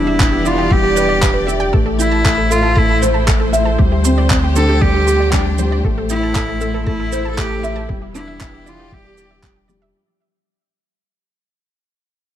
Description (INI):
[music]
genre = piano and strings electronica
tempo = 117 BPM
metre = 4/4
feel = straight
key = A minor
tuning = A4 = 440 Hz
[part]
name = clear cello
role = melody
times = 0.0-9.4 s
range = A3 to A4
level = -20 LUFS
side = right 1 dB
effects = none
[part]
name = warm symphonic string section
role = sustained chords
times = 0.0-9.9 s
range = A2 to D5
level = -24 LUFS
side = left 1 dB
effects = sidechain pumping
[part]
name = felt-muted upright piano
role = riff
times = 0.0-10.0 s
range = G3 to E5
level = -20 LUFS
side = left 2 dB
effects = digital delay
[part]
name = warm sub bass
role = bass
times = 0.0-9.9 s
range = E1 to D2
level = -19 LUFS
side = equal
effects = sidechain pumping
[part]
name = analog pluck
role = arpeggios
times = 0.1-9.9 s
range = G4 to G6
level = -26 LUFS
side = right 4 dB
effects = chorus, sidechain pumping, digital delay
[part]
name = electronic handclaps and shaker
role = drums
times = 0.2-9.8 s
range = none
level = -22 LUFS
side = right 2 dB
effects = none
[part]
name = electronic kick drum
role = drums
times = 0.2-9.5 s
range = none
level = -17 LUFS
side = equal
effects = none
[sound]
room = light reverb, small room ambience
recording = none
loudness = -13 LUFS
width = side -11 dB against mid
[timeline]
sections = 0.0-9.9 A section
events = drop 0.0-9.9; fade-out 4.5-9.9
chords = 0.0 Em7; 1.7 Am; 3.8 D7sus4; 5.8 Am; 7.9 Em7